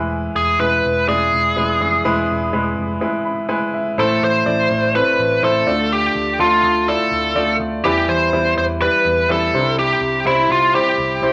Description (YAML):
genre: piano-driven pop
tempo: 124 BPM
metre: 4/4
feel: straight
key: A minor from 4.0 s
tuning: A4 = 442 Hz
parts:
  - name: clear upright piano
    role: accompaniment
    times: 0.0-11.3 s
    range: A2 to B5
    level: -22 LUFS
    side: equal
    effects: none
  - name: vintage muted picked electric bass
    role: bass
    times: 0.0-11.3 s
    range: E1 to E2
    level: -29 LUFS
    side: equal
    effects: none
  - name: biting lead guitar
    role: melody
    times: 0.4-11.3 s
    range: E4 to C5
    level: -19 LUFS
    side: equal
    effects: overdrive
room: wet studio reverb, RT60 0.5 s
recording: none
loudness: -17 LUFS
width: mono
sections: 0.0-4.0 A section; 4.0-11.3 B section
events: break 3.0-4.0; upright piano fill 3.0-4.0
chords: 0.0 E; 4.0 Am; 5.7 Dm; 7.8 Em; 9.5 C